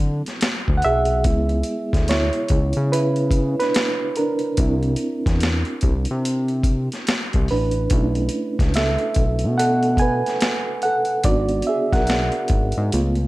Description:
R&B, neo-soul; 72 BPM; 4/4; swing 62% on 16ths; A4 = 439 Hz
reed electric piano; accompaniment; 0.0-13.3 s; G#3 to G#5; -22 LUFS; right 2 dB; harmonic tremolo
fat analog bass; bass; 0.0-13.3 s; G#1 to D3; -21 LUFS; equal
boom bap sampler-style drum kit; drums; 0.3-13.3 s; hi-hat, kick drum, snare drum; -22 LUFS; equal
light reverb; dark, warm production; -18 LUFS; side -18 dB against mid
0.0-13.3 A section
reed electric piano solo 0.0-13.3
0.0 D9; 1.2 C#m7; 4.6 C9; 7.9 Bm11; 11.2 G#m7b5

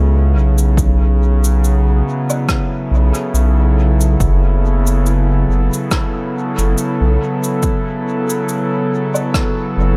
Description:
ambient dub; 70 BPM; 4/4; swing 55% on 16ths; A4 = 439 Hz
warbly tape-like pad; sustained chords; 0.0-10.0 s; C#3 to A4; -21 LUFS; equal; chorus, built-in reverb
round analog bass; bass; 0.0-10.0 s; F#1 to C#2; -15 LUFS; equal
cabasa, woodblock and rim click; drums; 0.6-9.5 s; -26 LUFS; equal; dub echo
electronic kick drum; drums; 0.8-9.5 s; -21 LUFS; equal; overdrive
little or no reverb; echo-heavy mix; -16 LUFS; mono
0.0-10.0 A section
0.0 F#7sus4

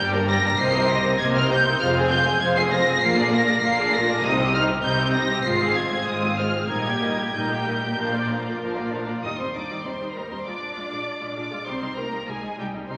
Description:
quick classical-period movement for string orchestra; 98 BPM; 4/4; straight; Eb major; A4 = 441 Hz
rich symphonic violin section; melody; 0.0-13.0 s; G5 to C7; -27 LUFS; equal
warm symphonic violin section; second line; 0.0-13.0 s; Eb4 to Bb5; -29 LUFS; equal
rich symphonic viola section; accompaniment; 0.0-13.0 s; F3 to Bb4; -31 LUFS; equal
warm studio double bass section; bass; 0.0-13.0 s; F1 to Eb2; -33 LUFS; equal
warm symphonic cello section; bass; 0.0-13.0 s; F2 to Eb4; -31 LUFS; equal
wet scoring stage reverb, RT60 1.5 s; -23 LUFS; mono
0.0-9.2 A section; 9.2-13.0 B section
0.0 Gm; 0.6 Cm7; 1.8 Fm; 3.0 Bb7; 4.2 Cm; 5.4 Fm/Ab; 6.7 Eb/Bb; 8.0 Bb; 9.2 Eb; 10.5 Bb7; 11.7 Cm

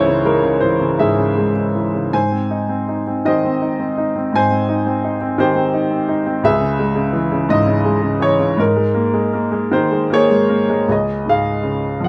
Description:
classical, lyrical solo piano; 52-58 BPM (dotted quarters); 6/8; rubato; Ab major; A4 = 440 Hz
clear baby grand piano; solo; 0.0-12.1 s; Db2 to Ab5; -17 LUFS; equal
light reverb; -17 LUFS; mono
0.0-10.9 A section; 10.9-12.1 B section
0.0 Dbm; 2.1 Abmaj7; 6.4 Dbm; 8.6 Absus2; 10.9 Db

